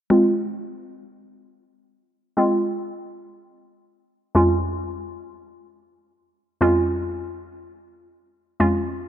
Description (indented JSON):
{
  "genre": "pop",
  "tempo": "free time",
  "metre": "none",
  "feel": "none",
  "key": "F minor",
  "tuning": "A4 = 439 Hz",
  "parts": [
    { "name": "hollow square pluck", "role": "accompaniment", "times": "0.1-9.1 s", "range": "F2 to F4", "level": "-19 LUFS", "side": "equal", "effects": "chorus, low-pass filter" }
  ],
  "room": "moderate lush hall reverb, RT60 2.3 s",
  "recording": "none",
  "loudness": "-19 LUFS",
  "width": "side -11 dB against mid",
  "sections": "0.1-9.1 A section",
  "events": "filter sweep on synth pluck 0.1-9.1",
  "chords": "0.1 Fm; 4.4 Db/F"
}